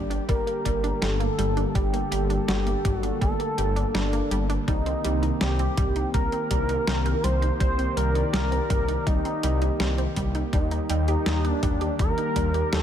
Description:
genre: synthwave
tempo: 82 BPM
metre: 4/4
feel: straight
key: unclear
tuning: A4 = 440 Hz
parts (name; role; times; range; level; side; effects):
- wide unison lead; melody; 0.0-12.8 s; D4 to C5; -28 LUFS; equal; vintage 12-bit sampler grit, ping-pong delay
- warm analog pad; sustained chords; 0.0-12.8 s; D3 to D5; -31 LUFS; equal; chorus
- wide unison pluck; arpeggios; 0.0-12.8 s; G3 to G4; -33 LUFS; right 3 dB; cassette tape, ping-pong delay
- wide detuned saw bass; bass; 0.0-12.8 s; G1 to Eb2; -26 LUFS; equal; chorus, sidechain pumping
- detuned 8-bit digital drum machine; drums; 0.1-12.8 s; hi-hat, snare drum, toms; -32 LUFS; equal; none
- electronic kick drum; drums; 0.3-12.5 s; none; -26 LUFS; equal; none
room: light reverb, digital ambience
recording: none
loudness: -22 LUFS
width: side -9 dB against mid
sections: 0.0-12.8 A section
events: none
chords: 0.0 Gmadd9; 4.7 Cm7; 10.5 Eb

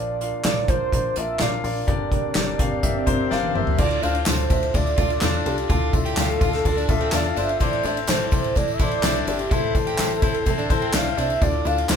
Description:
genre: piano-driven pop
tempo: 126 BPM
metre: 4/4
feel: straight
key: D minor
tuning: A4 = 440 Hz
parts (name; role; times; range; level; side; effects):
- warm velvety synth lead; melody; 0.0-12.0 s; G4 to F5; -26 LUFS; right 2 dB; chorus
- warm concert grand piano; accompaniment; 0.0-12.0 s; G2 to F5; -26 LUFS; left 6 dB; none
- plucky analog bass; bass; 0.0-12.0 s; G1 to E2; -28 LUFS; equal; none
- swell; sound effects; 2.3-3.8 s; none; -31 LUFS; left 2 dB; none
- unplugged drum kit; drums; 0.2-12.0 s; crash cymbal, handclaps, hi-hat, kick drum, ride cymbal, snare drum, toms; -23 LUFS; equal; none
- tambourine; percussion; 3.8-12.0 s; none; -38 LUFS; right 3 dB; none
- overdriven electric guitar; riff; 4.0-11.8 s; C4 to G4; -30 LUFS; right 3 dB; none
room: moderate studio reverb, RT60 0.6 s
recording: band playing live in one room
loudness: -19 LUFS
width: side -7 dB against mid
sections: 0.0-3.8 A section; 3.8-12.0 B section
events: swell 2.3-3.8; drum fill 3.3-3.8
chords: 0.0 Bb; 1.9 Gm; 3.8 Dm; 7.6 Am; 11.4 Dm

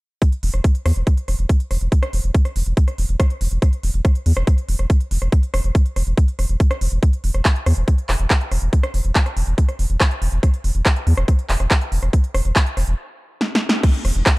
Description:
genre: psychedelic trance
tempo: 141 BPM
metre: 4/4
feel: straight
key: unclear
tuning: A4 = 441 Hz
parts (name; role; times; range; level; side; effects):
- big-room dance drum kit; drums; 0.2-14.3 s; crash cymbal, handclaps, hi-hat, rim click, snare drum; -23 LUFS; equal; overdrive
- electronic kick drum; drums; 0.2-14.3 s; none; -15 LUFS; equal; overdrive
- round analog bass; bass; 0.4-14.2 s; E1 to E2; -18 LUFS; equal; none
room: little or no reverb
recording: dark, warm production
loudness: -16 LUFS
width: side -23 dB against mid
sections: 0.2-13.8 A section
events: stop 13.0-13.8; drum fill 13.4-13.8; band accent 13.7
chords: none

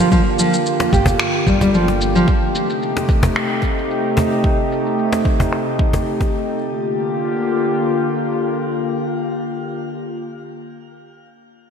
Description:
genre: organic downtempo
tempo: 111 BPM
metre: 4/4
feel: swing 53% on 16ths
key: G minor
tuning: A4 = 440 Hz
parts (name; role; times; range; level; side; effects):
- warbly tape-like pad; sustained chords; 0.0-9.9 s; C3 to G4; -19 LUFS; equal; chorus, built-in reverb, sidechain pumping, shimmer reverb
- nylon-string guitar; arpeggios; 0.0-2.3 s; F3 to G4; -18 LUFS; equal; digital delay, shimmer reverb
- quartz singing bowl; texture; 0.0-6.6 s; F5; -32 LUFS; right 8 dB; none
- electronic kick drum; drums; 0.1-6.3 s; none; -18 LUFS; equal; none
- electronic shaker and finger snaps; drums; 0.1-6.6 s; none; -25 LUFS; equal; low-pass filter on perc, low-pass filter on hats, low-pass filter on toms, low-pass filter on snare, low-pass filter on cymbals
- cajon; percussion; 0.8-6.3 s; none; -23 LUFS; left 1 dB; none
- upright bass; bass; 0.9-2.2 s; G1; -23 LUFS; equal; sidechain pumping
room: wet lush hall reverb, RT60 2.6 s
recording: bright 1980s-style digital production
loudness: -16 LUFS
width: side -7 dB against mid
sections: 0.0-6.6 A section; 6.6-10.9 B section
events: filter sweep on drum 0.0-6.6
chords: 0.0 Gm7; 2.3 Am7b5; 6.6 Gm7

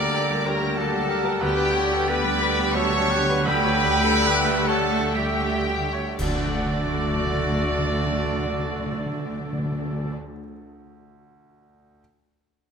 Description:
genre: classical, romantic movement for piano and orchestra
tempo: 54-97 BPM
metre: 3/4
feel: rubato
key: D major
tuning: A4 = 439 Hz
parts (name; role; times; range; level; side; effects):
- clear grand piano; melody; 0.0-12.0 s; D2 to F#5; -29 LUFS; right 1 dB; none
- warm studio violin section; melody; 0.0-10.1 s; D5 to D6; -31 LUFS; left 3 dB; none
- flute section; second line; 0.0-10.1 s; D5 to Bb5; -31 LUFS; right 1 dB; none
- mellow clarinet; second line; 0.0-10.1 s; F#4 to B4; -35 LUFS; left 2 dB; none
- warm chamber violin section; second line; 0.0-10.2 s; D4 to D5; -33 LUFS; left 1 dB; none
- warm oboe; second line; 0.0-10.2 s; A4 to G5; -34 LUFS; right 2 dB; none
- mellow bassoon; accompaniment; 0.0-10.1 s; D3 to G3; -35 LUFS; right 1 dB; none
- warm symphonic viola section; accompaniment; 0.0-10.1 s; A3 to G4; -32 LUFS; right 1 dB; none
- mellow French horn section; sustained chords; 0.0-10.2 s; A3 to G4; -32 LUFS; left 8 dB; none
- bright trumpet section; stabs; 0.0-10.1 s; G4 to D5; -28 LUFS; right 2 dB; none
- dark chamber cello section; bass; 0.0-10.1 s; D3; -33 LUFS; right 2 dB; none
- dark chamber double bass section; bass; 0.0-10.1 s; D2; -31 LUFS; right 3 dB; none
- timpani; percussion; 0.0-10.2 s; D3; -31 LUFS; left 1 dB; none
- clash cymbals and concert bass drum; percussion; 6.2-8.1 s; none; -34 LUFS; equal; none
room: light reverb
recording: close, detailed microphones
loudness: -20 LUFS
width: side -6 dB against mid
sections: 0.0-6.2 A section; 6.2-12.0 B section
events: slowing down 0.5-6.2; band accent 6.2-7.2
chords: 0.0 Gm/D; 1.4 G/D; 3.5 A7/D; 6.2 D

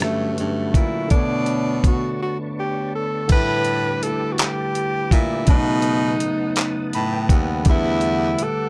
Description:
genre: slow six-eight R&B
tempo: 55 BPM (dotted quarters)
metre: 6/8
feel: straight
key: B minor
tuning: A4 = 440 Hz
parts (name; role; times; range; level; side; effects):
- breathy tenor saxophone; melody; 0.0-8.7 s; A3 to B4; -26 LUFS; equal; none
- overdriven tine electric piano; accompaniment; 0.0-8.7 s; C#3 to B5; -28 LUFS; equal; analog chorus
- tonewheel organ; sustained chords; 0.0-8.7 s; D4 to D#6; -37 LUFS; equal; chorus vibrato, slow rotary speaker
- bright baritone saxophone; bass; 0.0-8.5 s; D#2 to B2; -26 LUFS; equal; none
- dusty soul sampler-style drum kit; drums; 0.0-8.6 s; crash cymbal, handclaps, hi-hat, kick drum, rim click; -20 LUFS; equal; none
room: light reverb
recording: dark, warm production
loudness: -20 LUFS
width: mono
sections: 0.0-3.3 A section; 3.3-8.7 B section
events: break 2.2-3.3; tine electric piano fill 6.6-7.7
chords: 0.0 Gmaj9#11; 1.1 Bm9; 3.3 A9sus4; 5.5 B7; 7.7 Em11

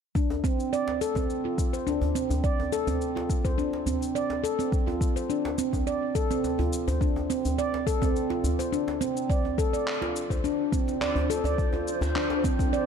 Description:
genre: organic downtempo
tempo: 105 BPM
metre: 4/4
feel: straight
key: D minor pentatonic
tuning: A4 = 437 Hz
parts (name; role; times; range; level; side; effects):
- handpan; arpeggios; 0.2-12.9 s; C4 to D5; -27 LUFS; right 1 dB; low-pass filter, digital delay
- electronic kick drum; drums; 0.2-12.7 s; none; -27 LUFS; equal; overdrive
- electronic shaker and handclaps; drums; 0.2-12.9 s; none; -38 LUFS; left 2 dB; none
- djembe; percussion; 0.3-12.7 s; none; -32 LUFS; equal; none
- granular cloud pad; sustained chords; 10.1-12.9 s; D4 to C5; -33 LUFS; equal; built-in reverb, sidechain pumping
room: light reverb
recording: dark, warm production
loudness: -25 LUFS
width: side -7 dB against mid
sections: 0.2-12.9 A section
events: none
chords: 0.2 Dm7

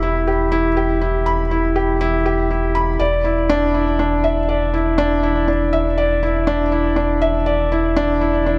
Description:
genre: piano and strings electronica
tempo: 121 BPM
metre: 4/4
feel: straight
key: unclear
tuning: A4 = 438 Hz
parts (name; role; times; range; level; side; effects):
- felt-muted upright piano; riff; 0.0-8.6 s; D4 to B5; -19 LUFS; equal; digital delay
- round analog bass; bass; 0.0-8.6 s; E1; -24 LUFS; equal; tube saturation
room: moderate huge ambient reverb, RT60 4.8 s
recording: none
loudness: -18 LUFS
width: mono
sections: 0.0-8.6 A section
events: none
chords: 0.0 Em; 3.0 Cadd9/E (rootless)

